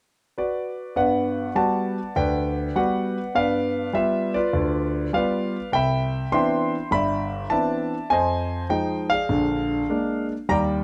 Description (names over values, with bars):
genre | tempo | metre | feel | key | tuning
solo jazz | 101 BPM | 4/4 | swing 67% on 8ths | G major | A4 = 440 Hz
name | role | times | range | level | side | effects
warm concert grand piano | solo | 0.4-10.8 s | G1 to C6 | -24 LUFS | equal | none
room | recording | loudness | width
moderate studio reverb, RT60 0.7 s | none | -24 LUFS | mono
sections
1.0-10.8 A section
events
none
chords
0.0 Bm/F#; 1.0 Gmaj7; 3.3 G7; 5.7 Cmaj9; 8.1 Fm7; 9.3 Bb7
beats
0.36 | 0.96 1.55 2.15 2.75 | 3.34 3.94 4.54 5.13 | 5.73 6.33 6.92 7.52 | 8.11 8.71 9.30 9.90 | 10.49